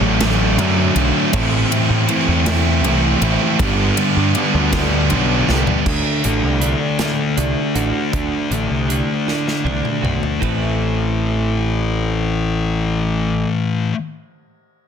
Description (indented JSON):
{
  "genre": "quiet-loud alternative rock",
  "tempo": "53 BPM (dotted quarters)",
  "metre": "6/8",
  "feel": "straight",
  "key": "A dorian",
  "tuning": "A4 = 440 Hz",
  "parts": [
    { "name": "distorted electric guitar", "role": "riff", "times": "0.0-5.8 s", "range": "G2 to E4", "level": "-19 LUFS", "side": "right 16 dB", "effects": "distortion" },
    { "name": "thick fuzz guitar", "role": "riff", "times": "0.0-13.9 s", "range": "G2 to E4", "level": "-19 LUFS", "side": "left 6 dB", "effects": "distortion" },
    { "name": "fuzz picked electric bass", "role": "bass", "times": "0.0-13.4 s", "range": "G1 to A2", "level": "-20 LUFS", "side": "right 1 dB", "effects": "overdrive" },
    { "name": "big rock drum kit", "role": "drums", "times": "0.2-10.6 s", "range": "crash cymbal, hi-hat, kick drum, ride cymbal, snare drum, toms", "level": "-24 LUFS", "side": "equal", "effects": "none" },
    { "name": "clean electric guitar", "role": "arpeggios", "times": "5.9-13.9 s", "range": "A2 to B4", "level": "-26 LUFS", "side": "right 14 dB", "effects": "lush chorus" }
  ],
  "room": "small room ambience",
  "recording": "dense, heavily limited modern master",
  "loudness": "-15 LUFS",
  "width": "side -7 dB against mid",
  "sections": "0.0-5.9 A section; 5.9-10.4 B section; 10.4-12.7 C section",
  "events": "drum fill 5.5-5.9, 9.3-10.4",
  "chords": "0.0 D; 1.3 Am; 3.6 G; 5.9 D; 10.4 Amadd9"
}